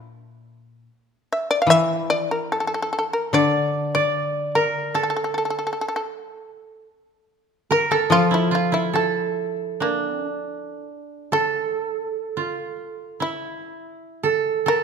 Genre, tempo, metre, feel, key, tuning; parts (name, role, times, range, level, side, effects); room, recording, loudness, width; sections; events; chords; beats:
japanese traditional, Japanese chamber music; 68-78 BPM; 2/4; rubato; A miyako bushi; A4 = 440 Hz
koto; accompaniment; 0.0-5.7, 8.1-10.7 s; Bb2 to F3; -24 LUFS; left 4 dB
shamisen; melody; 1.3-14.8 s; D4 to F5; -22 LUFS; left 1 dB
koto; second line; 3.3-14.8 s; D4 to D5; -24 LUFS; right 6 dB
moderate recital hall reverb, RT60 1.7 s; minimal, uncompressed stereo recording; -20 LUFS; side -6 dB against mid
0.0-9.8 A section; 9.8-14.8 B section
| 0.08 0.87 | 1.68 2.51 | 3.35 4.15 | 4.95 5.72 | 6.50 7.29 | 8.11 8.95 | 9.81 10.69 | 11.55 12.39 | 13.21 14.04